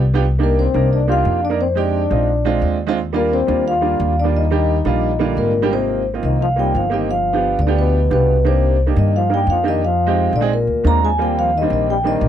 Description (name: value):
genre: jazz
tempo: 175 BPM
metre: 4/4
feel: straight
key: Eb major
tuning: A4 = 442 Hz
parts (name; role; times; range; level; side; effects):
- vibraphone with soft mallets; melody; 0.0-12.3 s; Bb4 to Bb5; -20 LUFS; equal; none
- upright bass; bass; 0.0-12.3 s; G1 to G2; -18 LUFS; left 1 dB; none
- clear baby grand piano; accompaniment; 0.1-12.3 s; D3 to Bb4; -21 LUFS; right 8 dB; none
- breathy trombone; second line; 0.4-12.3 s; Bb2 to F4; -24 LUFS; left 14 dB; none
room: little or no reverb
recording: dry, close 1970s-style studio recording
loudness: -15 LUFS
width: side -10 dB against mid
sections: 0.0-5.7 A section; 5.7-12.3 B section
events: none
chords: 0.2 Cm7; 1.6 Fm7; 2.3 Bb7; 3.0 Ebmaj9; 5.7 Ab6; 7.1 G7; 8.4 Cm9; 9.8 Fm7; 10.5 Bb7; 11.2 Eb6